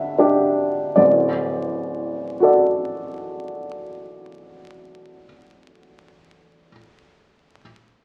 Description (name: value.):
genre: classical, romantic character piece for solo piano.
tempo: 41 BPM.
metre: 3/4.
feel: rubato.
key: D major.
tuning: A4 = 440 Hz.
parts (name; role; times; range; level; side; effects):
clear upright piano; solo; 0.0-7.6 s; D1 to F#5; -20 LUFS; equal; none.
room: wet large studio reverb, RT60 1.1 s.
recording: very old 78 rpm record, vinyl crackle.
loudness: -19 LUFS.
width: mono.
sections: 1.0-5.3 A section.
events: none.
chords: 0.0 G5/D; 1.0 D.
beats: | 0.95 2.40 3.85.